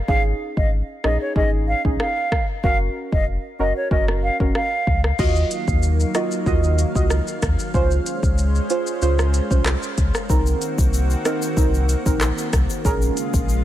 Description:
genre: dancehall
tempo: 94 BPM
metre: 4/4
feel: straight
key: unclear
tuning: A4 = 441 Hz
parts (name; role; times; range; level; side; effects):
- concert flute; melody; 0.1-5.0 s; Db5 to F5; -24 LUFS; right 1 dB; ping-pong delay
- deep mellow chord stab; accompaniment; 0.1-13.6 s; C4 to Eb5; -25 LUFS; right 3 dB; chorus
- warm sub bass; bass; 0.1-13.6 s; F1 to Eb2; -20 LUFS; equal; none
- afro-pop drum kit; drums; 0.1-13.6 s; crash cymbal, handclaps, hi-hat, kick drum, rim click, shaker; -22 LUFS; equal; none
- lush unison pad; sustained chords; 5.2-13.6 s; Db3 to F5; -27 LUFS; left 1 dB; chorus, sidechain pumping
- egg shaker; percussion; 10.3-13.6 s; none; -36 LUFS; left 8 dB; none
room: little or no reverb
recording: none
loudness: -18 LUFS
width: side -13 dB against mid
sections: 0.0-5.2 A section; 5.2-13.6 B section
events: none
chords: 0.1 Absus4; 2.6 Gb; 5.2 Ebmadd9; 7.7 Dbmaj7; 10.3 Cm7b5; 12.8 Bbm7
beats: | 0.08 0.72 1.36 2.00 | 2.64 3.28 3.91 4.55 | 5.19 5.83 6.47 7.11 | 7.74 8.38 9.02 9.66 | 10.30 10.94 11.57 12.21 | 12.85 13.49

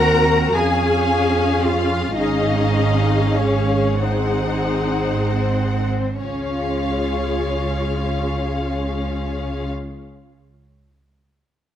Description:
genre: classical, slow romantic movement for string orchestra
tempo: 26-41 BPM (dotted quarters)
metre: 6/8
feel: rubato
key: Db major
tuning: A4 = 440 Hz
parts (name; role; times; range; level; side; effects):
- warm studio violin section; melody; 0.0-9.7 s; F5 to Gb5; -28 LUFS; left 4 dB; none
- warm studio violin section; second line; 0.0-9.6 s; C5 to Bb5; -26 LUFS; left 4 dB; none
- warm studio viola section; accompaniment; 0.0-9.7 s; C4 to Ab4; -24 LUFS; left 2 dB; none
- warm studio cello section; bass; 0.0-9.7 s; C4 to Bb4; -24 LUFS; equal; none
- warm studio double bass section; bass; 0.0-9.7 s; Ab1 to F2; -22 LUFS; right 3 dB; none
room: light reverb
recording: none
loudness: -17 LUFS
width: side -10 dB against mid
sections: 0.0-6.2 A section; 6.2-10.7 B section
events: slowing down 0.0-6.2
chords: 0.0 Cdim/Eb; 0.6 Db/F; 2.2 Db/Ab; 4.0 Ab7; 6.2 Db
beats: 0.56 | 2.16 4.00 | 6.21 8.47

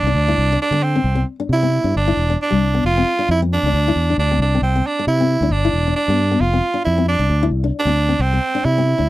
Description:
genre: highlife guitar band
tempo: 134 BPM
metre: 4/4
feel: straight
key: C major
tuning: A4 = 439 Hz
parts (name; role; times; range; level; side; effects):
- raspy tenor saxophone; melody; 0.0-9.1 s; C4 to F4; -19 LUFS; right 3 dB; none
- nylon-string guitar; accompaniment; 0.0-9.1 s; G3 to E4; -23 LUFS; left 6 dB; none
- fingered electric bass; bass; 0.0-9.1 s; E1 to D3; -18 LUFS; equal; none
room: little or no reverb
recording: dry, close 1970s-style studio recording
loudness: -15 LUFS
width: side -16 dB against mid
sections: 0.0-9.1 A section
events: none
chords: 0.1 Cadd9; 1.0 C; 1.9 G5; 2.8 F5; 3.7 Cadd9; 4.6 C; 5.5 G; 6.4 F5; 7.3 Cadd9; 8.2 C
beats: 0.14 0.59 | 1.04 1.49 1.93 2.38 | 2.83 3.28 3.73 4.17 | 4.62 5.07 5.52 5.96 | 6.41 6.86 7.31 7.75 | 8.20 8.65

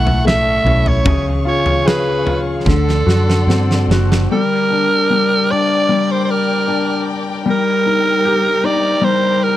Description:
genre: pop ballad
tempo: 76 BPM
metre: 4/4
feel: straight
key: G minor from 4.3 s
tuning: A4 = 440 Hz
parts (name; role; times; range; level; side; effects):
- raspy alto saxophone; melody; 0.0-9.6 s; A4 to F#5; -17 LUFS; right 2 dB; none
- felt-muted upright piano; accompaniment; 0.0-9.6 s; C#3 to G#4; -18 LUFS; left 5 dB; none
- warm studio string section; sustained chords; 0.0-9.6 s; G3 to D6; -26 LUFS; left 2 dB; none
- electric guitar at the edge of break-up; arpeggios; 0.0-4.9 s; A2 to A4; -24 LUFS; right 2 dB; none
- vintage muted fingered electric bass; bass; 0.0-4.3 s; F#1 to G2; -16 LUFS; right 1 dB; none
- huge arena drum kit; drums; 0.1-4.3 s; kick drum, snare drum, toms; -19 LUFS; equal; none
room: light reverb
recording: dry, close 1970s-style studio recording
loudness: -13 LUFS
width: side -13 dB against mid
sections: 0.0-4.3 A section; 4.3-9.6 B section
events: drum fill 2.7-4.3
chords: 0.0 A; 1.1 C#; 2.7 D7; 4.3 Gm; 7.5 Eb/G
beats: 0.26 | 1.06 1.86 2.67 3.49 | 4.30 5.09 5.89 6.67 | 7.46 8.24 9.02

